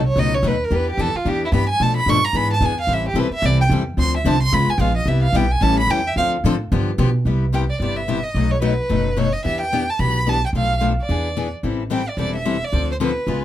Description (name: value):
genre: acoustic string swing (jazz manouche)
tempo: 220 BPM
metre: 4/4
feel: swing 58% on 8ths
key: unclear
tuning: A4 = 439 Hz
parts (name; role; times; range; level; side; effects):
- rich violin; melody; 0.0-13.4 s; E4 to Db6; -22 LUFS; right 2 dB; none
- upright bass; bass; 0.0-13.4 s; E1 to B2; -20 LUFS; right 1 dB; none
- picked steel-string acoustic guitar; accompaniment; 0.2-13.4 s; B2 to A4; -22 LUFS; left 5 dB; none
room: light reverb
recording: close, detailed microphones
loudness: -17 LUFS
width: side -12 dB against mid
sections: 0.0-7.3 A section; 7.3-13.4 B section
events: violin solo 0.0-7.3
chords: 0.0 B7; 0.7 Em7; 1.8 Bm7b5; 2.4 E7; 2.9 Am7; 4.0 Dm7; 4.5 Db7; 5.1 Cmaj7; 5.6 A7; 6.2 Dm7; 6.7 G7; 7.3 Cmaj7; 8.3 B7; 9.4 Em7; 10.5 Bm7b5; 11.1 E7; 11.6 Am7; 12.7 Dm7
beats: 0.17 0.45 | 0.72 0.99 1.26 1.53 | 1.81 2.08 2.35 2.62 | 2.90 3.17 3.44 3.71 | 3.98 4.26 4.53 4.80 | 5.07 5.35 5.62 5.89 | 6.16 6.44 6.71 6.98 | 7.25 7.53 7.80 8.07 | 8.35 8.62 8.90 9.17 | 9.44 9.72 9.99 10.27 | 10.54 10.81 11.09 11.36 | 11.63 11.91 12.18 12.45 | 12.73 13.00 13.27